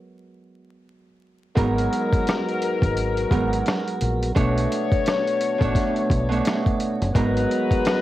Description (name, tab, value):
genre	hip hop, boom-bap hip-hop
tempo	86 BPM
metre	4/4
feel	swing 60% on 16ths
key	G# minor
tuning	A4 = 440 Hz
part	Celtic harp	accompaniment	0.0-8.0 s	G#2 to C#5	-25 LUFS	right 4 dB	cassette tape, high-pass filter, low-pass filter
part	mellow tonewheel organ	sustained chords	1.6-8.0 s	G#3 to A#5	-29 LUFS	equal	slow rotary speaker, high-pass filter, low-pass filter
part	mellow horn section	stabs	1.6-8.0 s	F#3 to C#5	-26 LUFS	left 6 dB	high-pass filter, low-pass filter, tape echo
part	deep dub fingered electric bass	bass	1.6-7.4 s	F#1 to B1	-24 LUFS	equal	transformer saturation
part	dusty soul sampler-style drum kit	drums	1.6-8.0 s	hi-hat, kick drum, rim click, snare drum	-23 LUFS	equal	cassette tape
room	light reverb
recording	home recording on cassette, vinyl crackle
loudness	-20 LUFS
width	side -14 dB against mid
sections	0.0-1.6 A section; 1.6-8.0 B section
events	break 0.0-1.6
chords	0.0 N.C.; 1.6 G#m9; 4.4 Bm9; 7.2 G#m9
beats	0.17 0.87 | 1.57 2.27 2.97 3.66 | 4.36 5.06 5.76 6.46 | 7.15 7.85